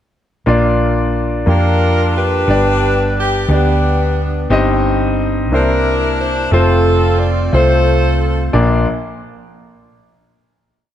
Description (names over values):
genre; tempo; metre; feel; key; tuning
slow gospel; 60 BPM (dotted quarters); 6/8; straight; Bb major; A4 = 440 Hz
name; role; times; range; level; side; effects
clear concert grand piano; accompaniment; 0.5-8.8 s; Bb1 to Eb5; -16 LUFS; left 2 dB; none
hollow-body short-scale fingered electric bass; bass; 0.5-8.8 s; F1 to F2; -16 LUFS; right 1 dB; none
warm saxophone section; melody; 1.5-8.5 s; B3 to D5; -17 LUFS; equal; none
room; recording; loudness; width
light reverb; none; -12 LUFS; side -10 dB against mid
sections
0.5-8.5 verse; 8.5-10.6 final chord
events
none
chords
0.5 Bb; 2.5 G; 4.5 Cm/G; 5.5 C9; 6.5 F; 8.5 Bb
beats
| 0.46 1.47 | 2.48 3.49 | 4.50 5.51 | 6.52 7.53 | 8.53